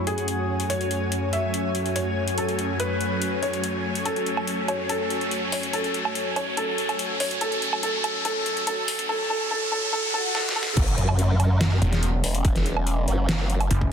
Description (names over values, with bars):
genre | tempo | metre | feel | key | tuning
heavy wobble dubstep | 143 BPM | 4/4 | half-time | F# minor | A4 = 440 Hz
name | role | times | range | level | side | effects
lush unison pad | sustained chords | 0.0-13.9 s | F#2 to C#4 | -31 LUFS | equal | chorus, sidechain pumping
riser, swell and impact | sound effects | 0.0-12.4 s | none | -30 LUFS | equal | none
granular cloud pad | texture | 0.0-9.1 s | F#4 to G#5 | -31 LUFS | left 1 dB | built-in reverb, sidechain pumping
felt-muted upright piano | melody | 0.1-10.8 s | G#4 to E5 | -28 LUFS | equal | dub echo
dubstep drum kit | drums | 0.1-13.8 s | crash cymbal, hi-hat, snare drum, woodblock | -29 LUFS | right 1 dB | overdrive, high-pass filter on hats, high-pass filter on snare, high-pass filter on perc, high-pass filter on cymbals, high-pass filter on room
formant-sweep wobble bass | bass | 10.8-13.7 s | E1 to F#2 | -22 LUFS | equal | chorus, overdrive
electronic kick drum | drums | 10.8-13.9 s | none | -23 LUFS | equal | overdrive
snarling distorted saw bass | bass | 11.8-13.9 s | E1 to F#1 | -21 LUFS | equal | overdrive
room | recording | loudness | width
moderate lush hall reverb, RT60 1.8 s | dense, heavily limited modern master, high-pass filter | -22 LUFS | side -7 dB against mid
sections
0.0-10.8 A section; 10.8-13.9 B section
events
build-up 0.0-10.8; riser 0.0-10.8; filter sweep on analog synth pad 0.0-10.8; filter sweep 0.0-10.8; swell 9.9-10.8; drum fill 10.3-10.8; drop 10.8-13.9; impact 10.8-12.4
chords
0.0 F#m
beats
0.28 | 0.70 1.12 1.54 1.96 | 2.38 2.80 3.22 3.64 | 4.05 4.47 4.89 5.31 | 5.73 6.15 6.57 6.99 | 7.41 7.83 8.25 8.67 | 9.09 9.51 9.93 10.35 | 10.77 11.19 11.61 12.03 | 12.45 12.87 13.29 13.71